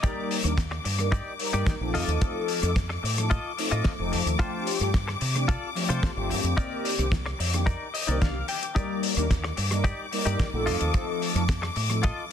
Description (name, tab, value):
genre	nu-disco, nu disco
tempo	110 BPM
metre	4/4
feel	straight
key	F mixolydian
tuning	A4 = 440 Hz
part	mellow synth brass	accompaniment	0.0-12.3 s	Eb3 to D5	-31 LUFS	left 1 dB	chorus, phaser, sidechain pumping, tape echo
part	warm symphonic string section	sustained chords	0.0-12.3 s	D6	-35 LUFS	left 4 dB	sidechain pumping
part	direct-recorded clean electric guitar	riff	0.0-12.2 s	Eb4 to G5	-33 LUFS	left 3 dB	analog chorus, tape echo
part	damped 70s drum kit	drums	0.0-12.1 s	hi-hat, rim click, snare drum	-31 LUFS	left 3 dB	studio reverb
part	kick drum	drums	0.0-12.1 s	none	-25 LUFS	equal	studio reverb
part	fingered electric bass with an envelope filter	bass	0.4-12.1 s	F1 to C3	-28 LUFS	equal	tube saturation
room	light reverb, small room ambience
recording	dense, heavily limited modern master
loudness	-24 LUFS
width	side -9 dB against mid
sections	0.0-12.3 A section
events	clean electric guitar fill 7.7-8.8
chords	0.0 Ebmaj7; 1.9 F7; 4.4 G9sus4; 6.6 Cm9; 8.8 Ebmaj7; 10.7 F7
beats	| 0.03 0.58 1.12 1.67 | 2.21 2.76 3.31 3.85 | 4.40 4.94 5.49 6.03 | 6.58 7.12 7.67 8.21 | 8.76 9.30 9.85 10.40 | 10.94 11.49 12.03